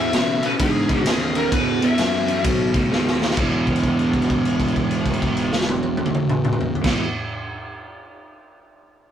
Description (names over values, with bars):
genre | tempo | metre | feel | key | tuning
blues rock power trio and southern rock | 130 BPM | 4/4 | swing 64% on 8ths | E major | A4 = 441 Hz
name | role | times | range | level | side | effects
lead guitar through a small cranked amp | melody | 0.0-2.4 s | G#4 to E5 | -24 LUFS | left 3 dB | overdrive
crunchy overdriven guitar | riff | 0.0-7.0 s | E2 to A3 | -21 LUFS | right 1 dB | none
fuzz fingered electric bass | bass | 0.0-7.0 s | E1 to B2 | -27 LUFS | equal | overdrive
raw garage drum kit | drums | 0.1-7.0 s | crash cymbal, kick drum, ride cymbal, snare drum, toms | -22 LUFS | equal | none
room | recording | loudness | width
light reverb | rough rehearsal-room recording, tube saturation | -18 LUFS | side -10 dB against mid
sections
0.0-3.4 A section; 3.4-7.1 B section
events
drum fill 2.9-3.4; held note 3.4-6.8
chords
0.0 E; 2.4 B; 3.4 E5